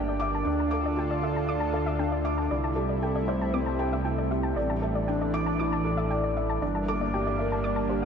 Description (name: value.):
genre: piano and strings electronica.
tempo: 117 BPM.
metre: 4/4.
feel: straight.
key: D minor.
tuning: A4 = 440 Hz.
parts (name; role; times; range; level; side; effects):
lush unison pad; sustained chords; 0.0-8.1 s; C3 to A4; -31 LUFS; right 2 dB; chorus.
soft round pluck; arpeggios; 0.0-8.1 s; A4 to D6; -34 LUFS; left 2 dB; chorus, ping-pong delay.
felt-muted upright piano; riff; 0.0-8.1 s; C4 to D6; -29 LUFS; left 1 dB; wide subtle chorus, ping-pong delay.
dark detuned saw bass; bass; 0.0-8.1 s; G1 to D2; -31 LUFS; equal; tube saturation.
room: wet cathedral reverb, RT60 6.7 s.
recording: dreamy mix soaked in reverb.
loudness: -25 LUFS.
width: side -7 dB against mid.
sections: 0.0-8.1 A section.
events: none.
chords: 0.5 Dm; 2.5 C6; 4.6 Asus4; 6.6 Gm.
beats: | 0.47 0.98 1.49 2.00 | 2.52 3.03 3.54 4.06 | 4.57 5.08 5.59 6.11 | 6.62 7.13 7.64.